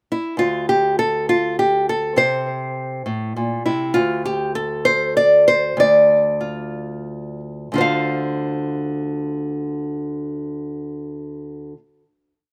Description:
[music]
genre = folk, solo fingerstyle acoustic guitar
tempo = 58-68 BPM (dotted quarters)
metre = 6/8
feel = straight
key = D minor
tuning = A4 = 440 Hz
[part]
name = nylon-string guitar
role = solo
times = 0.1-11.8 s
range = D2 to F5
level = -20 LUFS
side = equal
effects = none
[sound]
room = little or no reverb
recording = recorded outdoors, with no room sound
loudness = -19 LUFS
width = mono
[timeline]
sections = 0.0-0.4 pickup bar; 0.4-7.7 A section; 7.7-11.9 final chord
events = slowing down 3.9-7.7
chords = 0.0 N.C.; 2.2 Am; 3.9 N.C.; 5.8 Dm; 7.7 Dm7

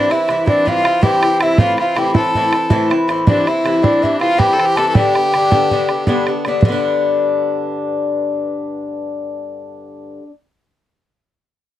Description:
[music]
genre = celtic folk, Celtic slip jig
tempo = 107 BPM (dotted quarters)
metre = 9/8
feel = straight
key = G mixolydian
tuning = A4 = 439 Hz
[part]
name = baroque flute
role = melody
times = 0.0-6.3 s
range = D5 to A5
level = -16 LUFS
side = equal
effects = none
[part]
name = clear fiddle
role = second line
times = 0.0-6.3 s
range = D4 to A4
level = -20 LUFS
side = left 2 dB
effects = none
[part]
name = Irish bouzouki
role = accompaniment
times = 0.0-10.3 s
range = G2 to E4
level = -18 LUFS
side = left 2 dB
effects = none
[part]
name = bodhran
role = percussion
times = 0.1-6.8 s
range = none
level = -16 LUFS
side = right 2 dB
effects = none
[sound]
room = light reverb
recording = dry, close 1970s-style studio recording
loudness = -13 LUFS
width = side -12 dB against mid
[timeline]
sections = 0.0-6.6 A section; 6.6-10.0 B section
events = none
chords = 0.0 C; 1.6 Am; 3.3 C; 5.0 G

